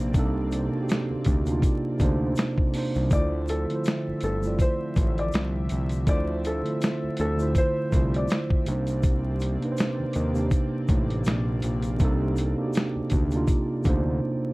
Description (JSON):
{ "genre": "lo-fi hip hop", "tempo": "81 BPM", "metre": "4/4", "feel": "swing 57% on 16ths", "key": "unclear", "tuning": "A4 = 440 Hz", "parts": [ { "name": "mellow tine electric piano", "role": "accompaniment", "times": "0.0-14.5 s", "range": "C3 to D5", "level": "-27 LUFS", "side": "right 1 dB", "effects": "cassette tape, low-pass filter" }, { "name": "lush unison pad", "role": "sustained chords", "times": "0.0-14.5 s", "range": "C3 to E5", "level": "-38 LUFS", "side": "left 1 dB", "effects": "chorus, low-pass filter" }, { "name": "fat analog bass", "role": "bass", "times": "0.0-14.2 s", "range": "G1 to Eb2", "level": "-27 LUFS", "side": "equal", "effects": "none" }, { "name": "dusty soul sampler-style drum kit", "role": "drums", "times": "0.1-14.0 s", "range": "hi-hat, kick drum, snare drum", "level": "-24 LUFS", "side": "equal", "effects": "none" }, { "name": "egg shaker", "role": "percussion", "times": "0.1-14.0 s", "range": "none", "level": "-50 LUFS", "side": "left 6 dB", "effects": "none" }, { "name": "felt-muted upright piano", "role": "melody", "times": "3.1-9.0 s", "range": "A4 to D5", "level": "-31 LUFS", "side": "left 1 dB", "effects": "low-pass filter, tape echo" } ], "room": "light reverb", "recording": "dark, warm production, vinyl crackle", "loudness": "-23 LUFS", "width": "side -22 dB against mid", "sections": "0.0-14.5 A section", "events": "break 14.2-14.5", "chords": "0.0 Cm9; 3.1 Dm9; 8.7 Cm9" }